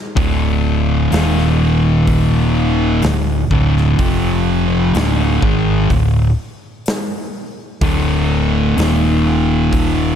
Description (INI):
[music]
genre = stoner and doom metal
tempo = 63 BPM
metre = 4/4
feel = straight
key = unclear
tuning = A4 = 440 Hz
[part]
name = thick fuzz guitar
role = riff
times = 0.2-10.2 s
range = D2 to G#3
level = -17 LUFS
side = left 8 dB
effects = distortion
[part]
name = thick fuzz guitar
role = riff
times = 0.2-10.2 s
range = D2 to G#3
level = -18 LUFS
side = right 8 dB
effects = distortion
[part]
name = fingered electric bass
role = bass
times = 0.2-10.2 s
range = D1 to G#1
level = -18 LUFS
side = equal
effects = overdrive
[part]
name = big rock drum kit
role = drums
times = 0.2-10.0 s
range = hi-hat, kick drum, snare drum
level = -21 LUFS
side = equal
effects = none
[sound]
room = studio reverb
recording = dark, warm production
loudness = -13 LUFS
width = side -8 dB against mid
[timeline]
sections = 0.0-10.2 A section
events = none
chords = 0.0 D5; 1.1 Eb5; 3.0 D5; 4.0 F5; 4.9 D5; 8.8 Eb5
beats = | 0.16 1.12 2.08 3.03 | 3.99 4.94 5.90 6.86 | 7.81 8.77 9.72